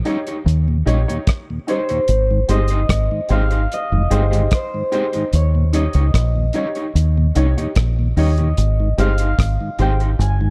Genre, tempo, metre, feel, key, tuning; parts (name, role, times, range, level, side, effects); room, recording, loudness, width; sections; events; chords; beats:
roots reggae; 74 BPM; 4/4; straight; Ab major; A4 = 440 Hz
concert harp; melody; 0.0-10.5 s; Bb4 to Ab5; -26 LUFS; equal; tape echo
warm upright piano; stabs; 0.0-10.0 s; Eb4 to Db5; -29 LUFS; equal
electric guitar at the edge of break-up; accompaniment; 0.1-10.1 s; Eb4 to Db5; -30 LUFS; equal; tape echo
mellow tonewheel organ; accompaniment; 0.1-10.5 s; Eb2 to G4; -28 LUFS; equal; slow rotary speaker
cloth-damped thuddy drum kit; drums; 0.1-10.4 s; hi-hat, kick drum, rim click; -22 LUFS; equal
deep dub fingered electric bass; bass; 0.5-10.5 s; F1 to Eb2; -18 LUFS; equal
studio ambience; dry, close 1970s-style studio recording; -18 LUFS; mono
0.0-10.5 A section
0.0 Eb7; 2.1 Abmaj7; 5.3 Eb7; 8.6 Abmaj7
0.46 1.27 | 2.08 2.89 3.71 4.52 | 5.33 6.14 6.95 7.76 | 8.57 9.38 10.19